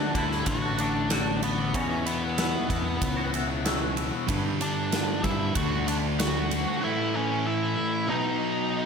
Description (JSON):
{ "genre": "quiet-loud alternative rock", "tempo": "94 BPM", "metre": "4/4", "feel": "straight", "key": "unclear", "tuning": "A4 = 440 Hz", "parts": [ { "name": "octave-fuzz lead guitar", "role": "melody", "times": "0.0-8.9 s", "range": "B3 to F#5", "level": "-30 LUFS", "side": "equal", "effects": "distortion, slapback echo" }, { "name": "twangy electric guitar", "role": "arpeggios", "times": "0.0-4.3 s", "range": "E2 to F#4", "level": "-33 LUFS", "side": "equal", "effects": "phaser, slapback echo" }, { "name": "thick fuzz guitar", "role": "riff", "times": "0.0-8.9 s", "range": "E2 to D4", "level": "-31 LUFS", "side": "left 8 dB", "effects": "distortion" }, { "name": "growling picked electric bass", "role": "bass", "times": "0.1-6.6 s", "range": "A1 to G2", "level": "-32 LUFS", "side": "equal", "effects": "overdrive" }, { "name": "big rock drum kit", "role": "drums", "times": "0.1-6.7 s", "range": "kick drum, ride cymbal, snare drum", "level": "-31 LUFS", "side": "right 1 dB", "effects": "none" }, { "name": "sludgy distorted guitar", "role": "riff", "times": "4.3-8.9 s", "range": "G2 to D4", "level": "-31 LUFS", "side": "right 10 dB", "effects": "overdrive, slapback echo" } ], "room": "wet concert hall reverb, RT60 2.1 s", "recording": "big arena sound", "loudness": "-24 LUFS", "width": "side -6 dB against mid", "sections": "0.0-8.9 A section", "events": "none", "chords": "0.0 D; 1.7 Esus2; 4.3 G5; 5.6 D; 6.8 A; 8.1 B" }